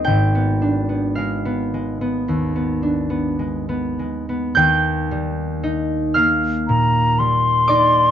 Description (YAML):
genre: classical, impressionist duo for flute and harp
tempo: 49-60 BPM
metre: 4/4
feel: rubato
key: Eb major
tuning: A4 = 440 Hz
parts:
  - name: concert harp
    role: accompaniment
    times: 0.0-8.1 s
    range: Ab1 to G6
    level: -18 LUFS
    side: right 1 dB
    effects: none
  - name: hollow concert flute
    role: melody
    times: 6.7-8.1 s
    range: Bb5 to C6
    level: -15 LUFS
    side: left 2 dB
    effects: none
room: light reverb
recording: dark, warm production, nothing above 7.5 kHz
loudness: -17 LUFS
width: side -9 dB against mid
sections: 0.0-4.6 A section; 4.6-8.1 B section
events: none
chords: 0.1 Abm6; 4.6 Ebadd9